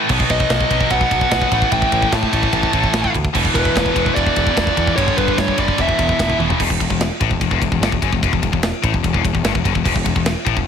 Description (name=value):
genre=heavy metal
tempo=148 BPM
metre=4/4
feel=straight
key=E minor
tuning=A4 = 439 Hz
part: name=scooped high-gain guitar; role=riff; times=0.0-10.7 s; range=E2 to B3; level=-21 LUFS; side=left 14 dB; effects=distortion
part: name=scooped high-gain guitar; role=riff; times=0.0-6.6 s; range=E2 to B3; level=-21 LUFS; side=right 14 dB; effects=distortion
part: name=growling picked electric bass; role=bass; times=0.1-10.7 s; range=E1 to A2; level=-22 LUFS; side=right 1 dB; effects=overdrive
part: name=tight metal drum kit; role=drums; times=0.1-10.7 s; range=crash cymbal, kick drum, ride cymbal, snare drum, toms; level=-20 LUFS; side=right 1 dB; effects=none
part: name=high-gain lead guitar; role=melody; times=0.3-6.4 s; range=B4 to A5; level=-20 LUFS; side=equal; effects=distortion
room=small room ambience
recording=none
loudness=-14 LUFS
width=side -7 dB against mid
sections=0.0-6.6 A section; 6.6-10.7 B section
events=drum fill 6.4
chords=0.1 B; 1.5 A5; 3.3 E5; 5.0 G5; 5.8 E5; 6.6 N.C.